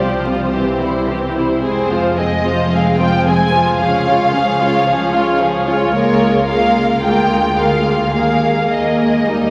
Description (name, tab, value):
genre	quick classical-period movement for string orchestra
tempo	110 BPM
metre	4/4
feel	straight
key	unclear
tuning	A4 = 439 Hz
part	warm studio violin section	melody	0.0-9.5 s	C5 to Ab5	-20 LUFS	equal	none
part	warm studio violin section	second line	0.0-9.5 s	Eb4 to Db5	-23 LUFS	equal	none
part	rich studio viola section	accompaniment	0.0-9.5 s	E3 to F4	-20 LUFS	equal	none
part	warm studio cello section	bass	0.0-9.5 s	Db2 to C3	-26 LUFS	equal	none
part	warm studio double bass section	bass	0.0-9.5 s	F1 to Eb2	-25 LUFS	equal	none
room	wet concert hall reverb, RT60 2.4 s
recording	vinyl crackle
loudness	-15 LUFS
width	mono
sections	0.0-9.5 A section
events	none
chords	0.0 Csus4; 0.5 C; 1.6 Fm; 3.8 Db; 5.9 Bbm7/Db; 7.0 Bb7/D; 8.1 Ebsus4